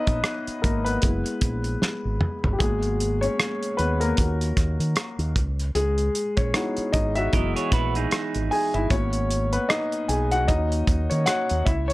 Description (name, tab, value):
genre	lush 1970s-style soul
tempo	76 BPM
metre	4/4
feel	swing 58% on 16ths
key	G# minor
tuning	A4 = 439 Hz
part	warm concert grand piano	accompaniment	0.0-11.9 s	E3 to G#5	-25 LUFS	left 2 dB	none
part	fingered electric bass with an envelope filter	bass	0.1-11.9 s	F#1 to D#3	-26 LUFS	equal	none
part	cloth-damped thuddy drum kit	drums	0.1-11.9 s	hi-hat, kick drum, rim click, snare drum, toms	-25 LUFS	equal	none
part	electric guitar through a small old amp	riff	7.3-8.9 s	D#4 to D#5	-28 LUFS	right 7 dB	spring reverb
room	small room ambience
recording	none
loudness	-21 LUFS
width	side -19 dB against mid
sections	0.0-11.9 A section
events	grand piano solo 0.0-11.9; drum fill 1.8-2.6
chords	0.0 C#m11; 1.0 F#9sus4; 2.6 G#m9; 4.2 D#m7; 5.4 C#m11; 7.3 F#9sus4; 8.9 G#m9; 10.5 D#m7